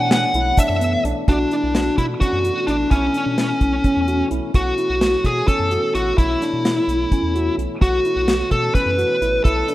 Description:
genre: progressive instrumental, band music in an uneven meter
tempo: 257 BPM (eighths)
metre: 7/8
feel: straight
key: B minor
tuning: A4 = 439 Hz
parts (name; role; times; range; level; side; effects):
- smooth overdriven lead guitar; melody; 0.0-9.7 s; C#4 to F#5; -19 LUFS; equal; digital delay
- mellow tonewheel organ; accompaniment; 0.0-9.7 s; B2 to D4; -30 LUFS; right 2 dB; slow rotary speaker
- bright tine electric piano; arpeggios; 0.0-9.7 s; B3 to F#4; -26 LUFS; equal; medium stereo tremolo
- round analog bass; bass; 0.0-9.6 s; A1 to B2; -25 LUFS; equal; none
- deep reggae drum kit; drums; 0.1-9.7 s; hi-hat, kick drum, snare drum; -20 LUFS; equal; none
- tube shaker; percussion; 0.6-0.9 s; none; -34 LUFS; left 3 dB; none
room: moderate lush hall reverb, RT60 2.0 s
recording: rough home demo mix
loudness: -16 LUFS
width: side -16 dB against mid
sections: 0.0-1.3 A section; 1.3-9.7 B section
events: lead electric guitar solo 0.0-1.3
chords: 0.0 Bm11; 1.3 Bm9; 2.9 A/B; 4.5 Bsus2; 6.2 A/B; 7.8 Bsus2

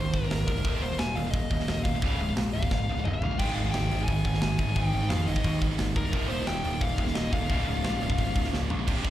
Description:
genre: heavy metal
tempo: 175 BPM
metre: 4/4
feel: straight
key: unclear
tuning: A4 = 441 Hz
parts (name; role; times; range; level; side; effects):
- dark smooth lead guitar; melody; 0.0-8.5 s; Bb4 to Ab5; -34 LUFS; left 4 dB; overdrive, slapback echo
- high-gain distorted guitar; riff; 0.0-9.1 s; C2 to Ab3; -34 LUFS; right 7 dB; distortion
- tight distorted guitar; riff; 0.0-9.1 s; C2 to Ab3; -36 LUFS; left 6 dB; distortion
- growling picked electric bass; bass; 0.0-9.1 s; C1 to F2; -30 LUFS; equal; overdrive
- tight metal drum kit; drums; 0.1-9.1 s; crash cymbal, hi-hat, kick drum, snare drum, toms; -30 LUFS; equal; none
- thick fuzz guitar; riff; 3.4-9.1 s; C2 to Ab4; -34 LUFS; right 2 dB; distortion
room: little or no reverb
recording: live gig heard through the venue's PA, recital hall reverb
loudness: -25 LUFS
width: side -13 dB against mid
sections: 0.0-8.9 A section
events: drum fill 2.7-3.4, 8.5-8.9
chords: 0.0 Ab; 0.7 Eb5; 2.0 Db; 3.4 Ab; 6.1 Eb; 7.5 Db

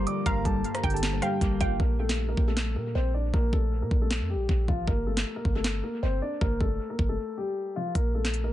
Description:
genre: hip hop, trap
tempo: 156 BPM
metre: 4/4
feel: half-time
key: unclear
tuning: A4 = 439 Hz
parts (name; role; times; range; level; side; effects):
- dark grand piano; melody; 0.0-8.5 s; F3 to D6; -31 LUFS; left 2 dB; low-pass filter, analog delay
- warbly dusty pluck; second line; 0.0-1.8 s; F5 to G5; -36 LUFS; equal; chorus, analog delay
- mellow electric guitar; accompaniment; 0.0-1.8 s; G2 to Bb3; -31 LUFS; left 1 dB; wide subtle chorus, low-pass filter
- deep dark ambient pad; sustained chords; 0.0-1.8 s; D3 to G4; -38 LUFS; right 1 dB; chorus, built-in reverb
- clean 808-style bass; bass; 0.0-8.5 s; G1 to Bb2; -28 LUFS; equal; none
- trap drum kit; drums; 0.1-8.4 s; handclaps, hi-hat, kick drum, rim click, snare drum; -29 LUFS; equal; overdrive, analog delay
room: little or no reverb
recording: echo-heavy mix, nothing above 11.0 kHz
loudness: -25 LUFS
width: side -13 dB against mid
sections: 0.0-1.8 A section; 1.8-8.5 B section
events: hi-hats muted 1.8-8.0; filter sweep 1.8-8.5; break 7.2-8.0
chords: 0.0 Gm; 1.8 N.C.; 4.9 Gm; 8.0 N.C.

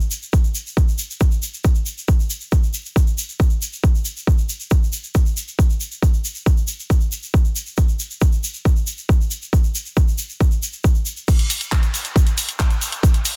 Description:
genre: trance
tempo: 137 BPM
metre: 4/4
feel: straight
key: none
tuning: none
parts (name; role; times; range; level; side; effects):
- egg shaker; percussion; 0.0-13.3 s; none; -30 LUFS; equal; none
- electronic kick drum; drums; 0.3-13.1 s; none; -18 LUFS; equal; none
- house drum kit; drums; 11.3-13.3 s; crash cymbal, handclaps, hi-hat; -27 LUFS; equal; sidechain pumping on hats, sidechain pumping on cymbals
room: little or no reverb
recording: dense, heavily limited modern master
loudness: -20 LUFS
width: mono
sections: 0.0-11.3 A section; 11.3-13.4 B section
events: drop 11.3-13.4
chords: none

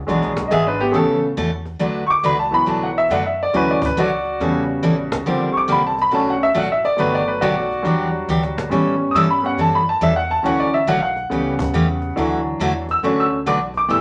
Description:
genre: country, western swing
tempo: 139 BPM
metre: 4/4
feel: swing 66% on 8ths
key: D major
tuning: A4 = 441 Hz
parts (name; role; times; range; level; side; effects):
- upright bass; bass; 0.0-14.0 s; G1 to A2; -33 LUFS; equal; none
- bright upright piano; accompaniment; 0.1-14.0 s; C#3 to E6; -20 LUFS; equal; none
- picked steel-string acoustic guitar; accompaniment; 0.1-14.0 s; B2 to B4; -24 LUFS; equal; none
- cajon; drums; 0.1-14.0 s; none; -33 LUFS; equal; none
room: wet studio reverb, RT60 0.6 s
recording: none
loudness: -19 LUFS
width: mono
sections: 0.0-14.0 A section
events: upright piano solo 0.0-14.0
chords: 0.1 E7; 0.9 Aadd9; 1.8 D6; 3.5 Dmaj7; 4.4 A7; 5.3 Bb6; 6.1 Bm7; 7.0 Gmaj7; 7.9 Em7; 8.7 A7; 10.4 Dmaj7; 11.3 A7/C#; 12.2 Dadd9; 13.0 Bm7/D

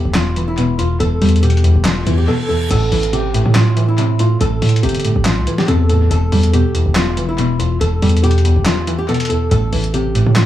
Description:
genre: hip hop, trap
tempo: 141 BPM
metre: 4/4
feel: half-time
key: A minor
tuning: A4 = 440 Hz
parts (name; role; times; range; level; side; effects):
- flamenco guitar; melody; 0.0-10.5 s; E4 to A4; -21 LUFS; right 1 dB; tape echo
- string-like resonator pluck; accompaniment; 0.0-10.5 s; E2 to G3; -17 LUFS; left 1 dB; chorus, phaser, tape echo
- distorted 808-style bass; bass; 0.1-10.5 s; E1 to A2; -15 LUFS; equal; distortion
- dusty soul sampler-style drum kit; drums; 0.1-10.5 s; crash cymbal, handclaps, hi-hat, snare drum; -22 LUFS; left 1 dB; tape echo
- reverse cymbal; sound effects; 2.0-2.7 s; none; -29 LUFS; right 2 dB; none
room: digital ambience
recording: echo-heavy mix, vinyl crackle, small room ambience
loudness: -13 LUFS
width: side -12 dB against mid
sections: 0.0-2.7 A section; 2.7-10.5 B section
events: reverse cymbal 2.0-2.7; drums muted 2.3-2.7; break 8.7-9.5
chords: 0.0 Em; 2.7 Am; 6.1 Em; 9.5 Am

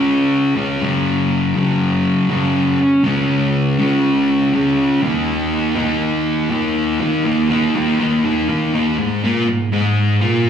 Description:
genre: rock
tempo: 121 BPM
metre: 4/4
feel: straight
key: unclear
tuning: A4 = 440 Hz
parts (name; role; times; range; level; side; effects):
- fuzz guitar; solo; 0.0-10.5 s; Gb2 to Eb4; -14 LUFS; equal; distortion, slapback echo
room: moderate club reverb, RT60 0.6 s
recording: live gig heard through the venue's PA, recital hall reverb, small room ambience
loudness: -15 LUFS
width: side -8 dB against mid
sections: 0.0-7.0 A section; 7.0-9.0 B section; 9.0-10.5 C section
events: none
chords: 0.0 Db5; 0.8 Gb5; 3.0 Db5; 5.0 Eb5; 9.0 N.C.

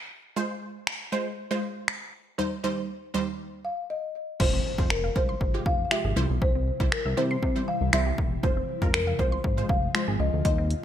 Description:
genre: dance-pop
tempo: 119 BPM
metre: 4/4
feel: straight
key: F minor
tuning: A4 = 440 Hz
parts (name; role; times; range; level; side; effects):
- wide unison pluck; accompaniment; 0.4-10.7 s; Eb2 to C5; -31 LUFS; right 2 dB; wide subtle chorus, sidechain pumping
- punchy analog drum machine; drums; 0.9-10.8 s; crash cymbal, finger snaps, hi-hat, kick drum; -26 LUFS; equal; gated reverb
- folk marimba with soft mallets; melody; 3.6-10.8 s; Bb4 to F5; -30 LUFS; left 1 dB; digital delay
- ethereal airy pad; sustained chords; 5.1-10.8 s; C3 to F4; -36 LUFS; right 1 dB; ensemble chorus, built-in reverb, sidechain pumping
- resonant blip pluck; arpeggios; 4.4-10.7 s; Eb3 to C6; -38 LUFS; equal; phaser, sidechain pumping, digital delay
- chorused synth bass; bass; 4.4-10.7 s; E1 to C3; -28 LUFS; equal; sidechain pumping
- impact; sound effects; 4.4-6.4 s; none; -37 LUFS; equal; none
room: light reverb, digital ambience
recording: bright 1980s-style digital production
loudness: -24 LUFS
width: side -10 dB against mid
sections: 0.0-4.4 A section; 4.4-10.8 B section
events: impact 4.4-6.4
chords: 0.4 Fm; 2.4 Cm/Eb; 4.4 Fm; 6.2 C; 8.4 Fm

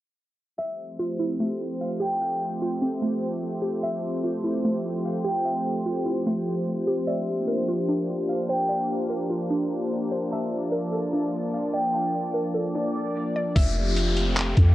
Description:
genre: hip hop, atmospheric cloud-rap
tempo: 148 BPM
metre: 4/4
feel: half-time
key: F major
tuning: A4 = 440 Hz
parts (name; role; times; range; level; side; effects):
- concert harp; melody; 0.6-14.7 s; C5 to G5; -32 LUFS; equal; cassette tape, tape echo
- sweeping resonant pad; sustained chords; 0.6-14.7 s; F3 to A5; -27 LUFS; equal; chorus, sidechain pumping, cassette tape
- mallet-like synth pluck; arpeggios; 0.6-13.6 s; A3 to F6; -30 LUFS; right 1 dB; chorus, cassette tape, tape echo
- soft 808-style bass; bass; 13.6-14.7 s; F1 to F2; -21 LUFS; equal; none
- trip hop sampler-style drum kit; drums; 13.6-14.7 s; handclaps, hi-hat, kick drum; -22 LUFS; equal; cassette tape
- downlifter; sound effects; 13.6-14.7 s; none; -31 LUFS; left 2 dB; none
room: light reverb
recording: home recording on cassette, low-pass filter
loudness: -24 LUFS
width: side -15 dB against mid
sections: 0.6-13.6 A section; 13.6-14.7 B section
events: filter sweep 0.6-13.6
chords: 0.6 Fmaj9; 7.1 C9sus4; 10.3 Bbmaj7; 13.6 Fmaj9

